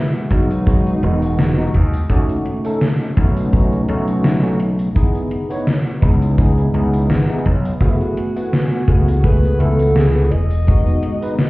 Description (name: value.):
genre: vaporwave.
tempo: 84 BPM.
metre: 4/4.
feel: swing 54% on 16ths.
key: F# dorian.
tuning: A4 = 440 Hz.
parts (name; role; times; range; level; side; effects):
breathy alto saxophone; melody; 0.0-1.7, 7.8-11.5 s; D#4 to D#5; -25 LUFS; equal; vintage 12-bit sampler grit, tape echo.
lush unison pad; sustained chords; 0.0-11.5 s; C#3 to G#5; -28 LUFS; equal; none.
gated 80s digital drum machine; drums; 0.2-11.5 s; hi-hat, snare drum, tambourine; -18 LUFS; left 1 dB; gated reverb, gated reverb snare, overdrive.
tine electric piano; accompaniment; 0.3-11.4 s; G#3 to C#5; -22 LUFS; equal; medium stereo tremolo, analog chorus, tape echo.
gritty slap bass; bass; 0.3-10.9 s; E1 to D#2; -16 LUFS; equal; overdrive, tube saturation.
kick drum; drums; 0.3-10.8 s; none; -17 LUFS; equal; none.
room: small room ambience.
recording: heard muffled through a wall, stone room reverb, EQ.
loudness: -14 LUFS.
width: side -20 dB against mid.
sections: 0.0-11.5 A section.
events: none.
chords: 0.0 Emaj9; 1.7 B9; 5.0 C#m9; 7.8 F#m11; 10.3 Emaj9.